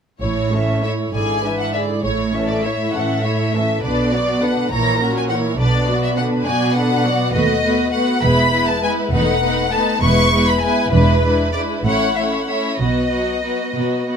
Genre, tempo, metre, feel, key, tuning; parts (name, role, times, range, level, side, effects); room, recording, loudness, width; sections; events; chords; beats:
quick classical-period movement for string orchestra; 62-69 BPM (dotted quarters); 6/8; rubato; A major, E major from 7.3 s; A4 = 441 Hz
rich symphonic violin section; melody; 0.2-14.2 s; B4 to C#6; -21 LUFS; left 2 dB
rich chamber violin section; second line; 0.2-14.2 s; B3 to E5; -22 LUFS; left 1 dB
dark studio viola section; accompaniment; 0.2-14.2 s; D3 to E4; -22 LUFS; equal
rich symphonic cello section; bass; 0.2-14.2 s; D#2 to B2; -22 LUFS; right 2 dB
warm symphonic double bass section; bass; 0.2-13.4 s; E1 to D#2; -22 LUFS; right 2 dB
light reverb; close, detailed microphones; -15 LUFS; side -7 dB against mid
0.2-14.2 A section
0.2 A; 1.1 E7/G#; 2.0 A; 3.8 Bm; 4.7 F#7/A#; 5.6 Bm; 7.3 B7/D#; 8.2 E; 9.1 B7/E; 10.0 E; 10.9 E7; 11.8 A; 12.8 B
| 0.22 1.14 | 2.04 2.94 | 3.83 4.71 | 5.58 6.46 | 7.34 8.23 | 9.13 10.03 | 10.92 11.85 | 12.79 13.75